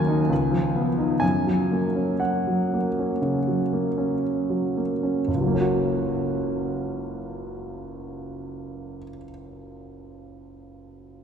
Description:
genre	classical, romantic character piece for solo piano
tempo	60 BPM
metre	4/4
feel	rubato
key	F# major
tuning	A4 = 438 Hz
part	clear grand piano	solo	0.0-11.2 s	F#1 to G#5	-23 LUFS	equal	none
room	wet cathedral reverb, RT60 3.9 s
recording	recorded in a church or concert hall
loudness	-22 LUFS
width	side -7 dB against mid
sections	0.0-5.3 A section; 5.3-9.3 B section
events	slowing down 0.0-5.3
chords	0.3 C#9; 1.2 F#

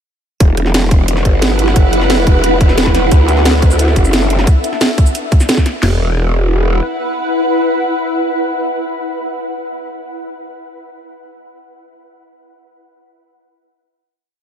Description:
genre	dark technical drum and bass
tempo	177 BPM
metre	4/4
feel	straight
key	unclear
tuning	A4 = 440 Hz
part	swarming drone	sustained chords	1.2-9.3 s	D4 to F#5	-17 LUFS	equal	built-in reverb, analog chorus, sidechain pumping
part	growl bass	bass	0.4-6.8 s	E1 to D2	-13 LUFS	equal	chorus, overdrive
part	drum and bass drum kit	drums	0.4-5.9 s	crash cymbal, kick drum, snare drum, toms	-11 LUFS	equal	overdrive
part	drum and bass drum kit	drums	0.4-5.7 s	cabasa, hi-hat, snare drum	-18 LUFS	right 1 dB	overdrive
room	light reverb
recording	none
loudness	-11 LUFS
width	side -8 dB against mid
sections	0.4-5.8 drop; 5.8-8.5 final chord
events	drop 0.4-5.8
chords	0.4 Em; 3.1 Dadd9; 5.8 E5

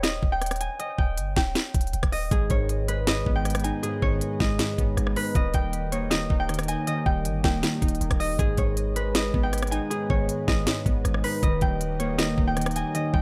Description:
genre	hip hop, trap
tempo	158 BPM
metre	4/4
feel	half-time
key	G# harmonic minor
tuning	A4 = 435 Hz
part	concert harp	melody	0.0-13.2 s	G#4 to G#5	-32 LUFS	equal	tape echo
part	warm 808-style bass	bass	0.0-13.2 s	D#1 to G#1	-32 LUFS	equal	none
part	trap drum kit	drums	0.0-13.2 s	hi-hat, kick drum, rim click, snare drum	-28 LUFS	equal	none
part	glassy digital keys	accompaniment	2.3-13.2 s	G#2 to D#5	-32 LUFS	equal	chorus
part	warm analog pad	sustained chords	2.3-13.2 s	D#3 to D#5	-40 LUFS	equal	chorus
room	little or no reverb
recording	dry, gritty hardware recording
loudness	-25 LUFS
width	mono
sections	0.0-13.2 A section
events	none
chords	0.0 D#; 2.3 G#m; 5.4 D#; 8.4 G#m; 11.4 D#

